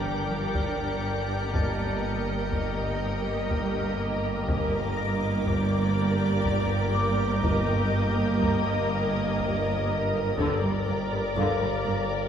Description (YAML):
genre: cinematic, suspense film score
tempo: 61 BPM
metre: 3/4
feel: straight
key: G minor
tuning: A4 = 439 Hz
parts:
  - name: muted symphonic violin section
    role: melody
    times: 0.0-12.3 s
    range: D5 to G5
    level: -34 LUFS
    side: left 3 dB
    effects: none
  - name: muted studio violin section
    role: second line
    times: 0.0-12.3 s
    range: Bb4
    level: -32 LUFS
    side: right 1 dB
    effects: none
  - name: muted symphonic viola section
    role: accompaniment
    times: 0.0-12.0 s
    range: D3 to D4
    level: -33 LUFS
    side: right 1 dB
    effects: none
  - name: soft additive organ-like pad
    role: sustained chords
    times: 0.0-12.3 s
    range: G4 to D6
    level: -35 LUFS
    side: equal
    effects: ensemble chorus, built-in reverb
  - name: muted symphonic cello section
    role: bass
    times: 0.0-11.9 s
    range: G2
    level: -31 LUFS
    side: right 2 dB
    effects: none
  - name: muted symphonic double bass section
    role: bass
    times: 0.0-11.9 s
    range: G1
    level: -33 LUFS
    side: right 2 dB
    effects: none
  - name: overtone-sweeping drone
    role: drone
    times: 0.0-12.3 s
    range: G1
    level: -34 LUFS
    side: left 2 dB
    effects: chorus, built-in reverb
  - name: timpani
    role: percussion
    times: 0.0, 7.4-11.8 s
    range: G2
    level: -34 LUFS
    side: left 1 dB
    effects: none
  - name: sub drop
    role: sound effects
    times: 0.0-1.5 s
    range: none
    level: barely audible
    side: none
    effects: none
  - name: large celesta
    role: texture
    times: 0.0-12.3 s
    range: F5 to Bb6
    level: -37 LUFS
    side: left 4 dB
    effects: none
  - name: muted symphonic violin section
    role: texture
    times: 0.0-9.9 s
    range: D6 to C#7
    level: -40 LUFS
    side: left 4 dB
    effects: none
  - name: taiko ensemble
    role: drums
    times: 0.3-12.3 s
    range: none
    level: -34 LUFS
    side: left 1 dB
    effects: none
room: wet concert hall reverb, RT60 2.0 s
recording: none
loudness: -24 LUFS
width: side -8 dB against mid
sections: 0.0-12.3 A section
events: impact 0.0-1.5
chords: 0.0 Gm; 1.5 Eb/G; 4.5 Gm